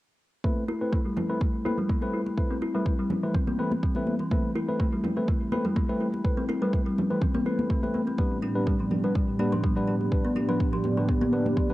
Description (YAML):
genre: afro house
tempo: 124 BPM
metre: 4/4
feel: swing 53% on 16ths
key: A minor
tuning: A4 = 440 Hz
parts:
  - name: kalimba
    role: arpeggios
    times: 0.4-11.6 s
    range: D3 to E4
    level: -28 LUFS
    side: equal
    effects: sidechain pumping, low-pass filter, cassette tape, tape echo
  - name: bright tine electric piano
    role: stabs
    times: 0.4-11.7 s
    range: G3 to B4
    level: -32 LUFS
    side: left 1 dB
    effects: sidechain pumping, low-pass filter, cassette tape, tape echo
  - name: electronic kick drum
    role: drums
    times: 0.4-11.7 s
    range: none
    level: -27 LUFS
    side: equal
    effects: cassette tape
  - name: congas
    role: percussion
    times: 0.4-11.7 s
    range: none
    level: -33 LUFS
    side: left 1 dB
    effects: none
  - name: dark analog pad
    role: sustained chords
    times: 8.4-11.7 s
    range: A2 to D5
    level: -30 LUFS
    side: right 2 dB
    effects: chorus, sidechain pumping, cassette tape
room: light reverb, small room ambience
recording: home recording on cassette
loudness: -24 LUFS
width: side -17 dB against mid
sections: 0.4-11.7 A section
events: filter sweep on kalimba 0.4-11.7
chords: 0.4 Amadd9; 8.2 G/A